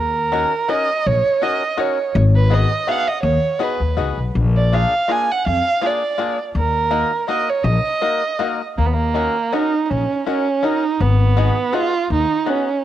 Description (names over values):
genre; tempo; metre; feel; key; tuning
musette waltz; 163 BPM; 3/4; swing 54% on 8ths, rubato; Eb minor; A4 = 440 Hz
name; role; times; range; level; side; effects
dark violin; melody; 0.0-12.8 s; Bb3 to Ab5; -19 LUFS; right 4 dB; cassette tape
upright bass; bass; 0.0-12.2 s; Ab1 to F2; -17 LUFS; left 2 dB; none
bluegrass banjo; accompaniment; 0.3-12.7 s; Bb3 to Bb4; -24 LUFS; left 8 dB; cassette tape
room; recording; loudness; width
light reverb; home recording on cassette; -16 LUFS; side -12 dB against mid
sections
0.0-8.8 A section; 8.8-12.8 A section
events
none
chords
0.0 Ebm7; 2.2 Abm7; 4.4 Bb7; 6.5 Ebm; 8.8 Ebm7; 11.0 Abm7